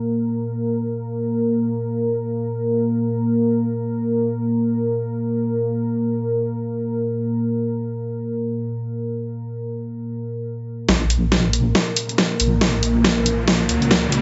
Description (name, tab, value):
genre	deep dubstep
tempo	free time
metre	none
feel	none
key	unclear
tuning	A4 = 438 Hz
part	dark analog pad	sustained chords	0.0-14.2 s	Bb3 to Bb4	-24 LUFS	equal	chorus
part	deep soft wobble bass	bass	10.9-14.2 s	Bb1 to Db2	-23 LUFS	equal	chorus
part	dubstep drum kit	drums	10.9-14.2 s	hi-hat, snare drum	-21 LUFS	equal	overdrive
part	electronic kick drum	drums	10.9-14.0 s	none	-30 LUFS	equal	none
part	riser	sound effects	11.7-14.2 s	none	-33 LUFS	equal	none
room	moderate lush hall reverb, RT60 2.2 s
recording	nothing above 7.8 kHz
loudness	-21 LUFS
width	mono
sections	0.0-10.9 A section; 10.9-14.2 B section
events	build-up 10.9-14.2; drum fill 10.9-14.2; riser 12.0-14.2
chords	0.0 N.C.; 10.9 Bbm